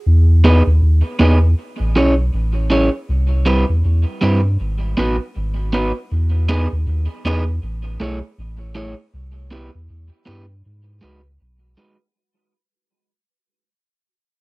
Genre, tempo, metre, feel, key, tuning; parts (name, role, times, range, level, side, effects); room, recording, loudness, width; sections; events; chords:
roots reggae; 79 BPM; 4/4; swing 60% on 16ths; E major; A4 = 439 Hz
warm sub bass; bass; 0.1-11.8 s; G#1 to G#2; -16 LUFS; equal
electric guitar at the edge of break-up; accompaniment; 0.4-12.0 s; G3 to C#5; -18 LUFS; right 1 dB; cassette tape, tape echo
little or no reverb; home recording on cassette; -15 LUFS; side -23 dB against mid
0.1-12.2 A section
fade-out 0.1-12.2
0.1 Emaj7; 1.6 Amaj7; 3.1 Cmaj7; 4.6 G#m7; 6.1 Emaj7; 7.6 Amaj7; 9.1 Cmaj7; 10.6 G#m7